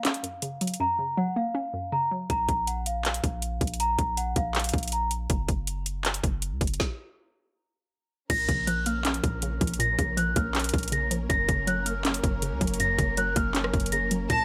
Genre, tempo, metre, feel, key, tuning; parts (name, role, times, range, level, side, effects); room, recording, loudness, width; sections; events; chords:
hip hop, trap; 160 BPM; 4/4; half-time; A4 = 440 Hz
large celesta; melody; 0.0-5.1, 8.3-14.4 s; F5 to Bb6; -31 LUFS; equal; low-pass filter
hollow square pluck; accompaniment; 0.0-2.3, 8.3-14.4 s; Gb2 to Db4; -34 LUFS; equal; chorus, low-pass filter
trap drum kit; drums; 0.0-14.4 s; crash cymbal, handclaps, hi-hat, kick drum, rim click, snare drum; -30 LUFS; equal
warm 808-style bass; bass; 2.3-14.4 s; Gb1 to Db2; -34 LUFS; equal
warm studio string section; sustained chords; 8.3-14.4 s; F3 to Bb4; -38 LUFS; equal
warm symphonic violin section; second line; 14.3-14.4 s; A5; -28 LUFS; equal
light reverb, small room ambience; -27 LUFS; mono
0.0-8.3 A section; 8.3-14.4 B section
break 0.0-2.3, 5.3-8.3; drums muted 0.8-2.3; stop 6.8-8.3
0.0 Gb; 2.3 Bb5; 5.3 Gb5; 8.3 Bbm; 11.3 Gb